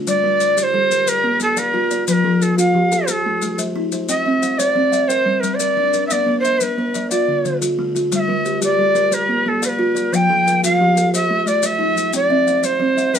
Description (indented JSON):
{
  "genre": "southern african traditional, mbira-style interlocking cycle",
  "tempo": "119 BPM (dotted quarters)",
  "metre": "12/8",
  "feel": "straight",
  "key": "G equiheptatonic",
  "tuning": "A4 = 440 Hz",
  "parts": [
    { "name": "buzzing kalimba", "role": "arpeggios", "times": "0.0-13.2 s", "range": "D3 to F5+29c", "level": "-21 LUFS", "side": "left 2 dB", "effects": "none" },
    { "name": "buzzing kalimba", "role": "arpeggios", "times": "0.0-13.2 s", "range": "D3 to A5-29c", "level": "-24 LUFS", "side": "right 3 dB", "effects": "tape echo" },
    { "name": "breathy bright Native American-style cedar flute", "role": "melody", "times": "0.1-13.2 s", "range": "A4-38c to G5", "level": "-17 LUFS", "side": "equal", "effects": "none" },
    { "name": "maracas", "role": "percussion", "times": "0.1-13.2 s", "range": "none", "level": "-26 LUFS", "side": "left 6 dB", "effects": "none" }
  ],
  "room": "moderate studio reverb, RT60 0.6 s",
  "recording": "none",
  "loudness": "-15 LUFS",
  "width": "side -8 dB against mid",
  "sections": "0.1-13.2 A section",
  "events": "none",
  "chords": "0.1 Gm; 1.1 Bb; 2.1 F; 3.1 Am; 4.1 C; 5.1 Gm; 6.1 Bb; 7.1 Dm; 8.1 Gm; 9.1 Bb; 10.1 F; 11.1 Am; 12.1 C",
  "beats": "| 0.06 0.57 1.07 1.57 | 2.08 2.58 3.08 3.59 | 4.09 4.59 5.10 5.60 | 6.10 6.61 7.11 7.61 | 8.12 8.62 9.12 9.62 | 10.12 10.63 11.13 11.63 | 12.13 12.63 13.13"
}